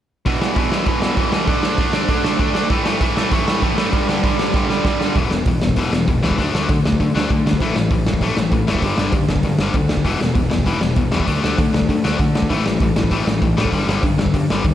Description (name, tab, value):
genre	punk rock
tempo	196 BPM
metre	4/4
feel	straight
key	unclear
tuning	A4 = 441 Hz
part	distorted electric guitar	riff	0.3-14.7 s	E2 to D4	-20 LUFS	left 4 dB	overdrive
part	overdriven electric guitar	riff	0.3-5.2 s	E2 to D4	-22 LUFS	right 10 dB	slapback echo
part	raw garage drum kit	drums	0.3-14.7 s	hi-hat, kick drum, snare drum	-19 LUFS	right 1 dB	none
part	fuzz picked electric bass	bass	5.2-14.7 s	E1 to D3	-23 LUFS	right 1 dB	overdrive
room	moderate lush hall reverb, RT60 1.6 s, small room ambience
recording	big arena sound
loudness	-15 LUFS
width	side -11 dB against mid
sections	0.3-5.2 A section; 5.2-14.7 B section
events	drum fill 4.5-5.2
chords	0.3 E5; 1.5 D5; 2.7 A5; 3.9 G5; 5.2 E5; 6.4 D5; 7.6 A5; 8.8 G5; 10.0 E5; 11.3 D5; 12.5 A5; 13.7 G5